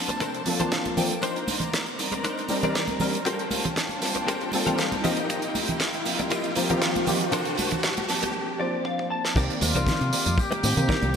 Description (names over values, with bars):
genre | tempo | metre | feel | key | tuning
nu-disco, nu disco | 118 BPM | 4/4 | swing 53% on 16ths | C dorian | A4 = 441 Hz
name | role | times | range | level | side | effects
barky reed electric piano | accompaniment | 0.0-11.1 s | Eb3 to A5 | -29 LUFS | equal | overdrive, ensemble chorus, sidechain pumping, ping-pong delay
rich chamber violin section | sustained chords | 0.0-11.2 s | Bb3 to D6 | -36 LUFS | left 2 dB | sidechain pumping
riser | sound effects | 0.1-8.3 s | none | -34 LUFS | left 1 dB | none
direct-recorded clean electric guitar | riff | 0.1-11.2 s | C3 to A5 | -31 LUFS | left 2 dB | ensemble chorus, low-pass filter
damped 70s drum kit | drums | 0.1-11.1 s | crash cymbal, hi-hat, snare drum, tambourine, toms | -29 LUFS | right 2 dB | high-pass filter on hats, high-pass filter on toms, high-pass filter on cymbals, high-pass filter on snare, high-pass filter on perc, high-pass filter on room, gated reverb
congas and tambourine | percussion | 0.1-11.2 s | none | -32 LUFS | right 3 dB | none
kick drum | drums | 0.2-11.0 s | none | -27 LUFS | equal | high-pass filter on kick, high-pass filter on snare, high-pass filter on room
fingered electric bass with an envelope filter | bass | 9.4-11.2 s | C2 to C3 | -26 LUFS | equal | none
warm trumpet section | melody | 9.6-11.2 s | F4 to G4 | -29 LUFS | left 2 dB | vintage 12-bit sampler grit
room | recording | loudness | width
wet lush hall reverb, RT60 2.0 s, small room ambience | bright 1980s-style digital production | -23 LUFS | side -7 dB against mid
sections
0.0-9.4 A section; 9.4-11.2 B section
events
build-up 0.0-9.4; riser 0.1-8.3; clean electric guitar fill 0.5-1.2, 8.3-9.4; break 8.3-9.4; drum fill 8.9-9.4; drop 9.4-11.2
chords
0.0 Bbmaj9/C; 1.2 Cm9; 3.3 Gm11; 5.0 F9sus4; 7.3 Bbmaj9/C; 9.4 Cm9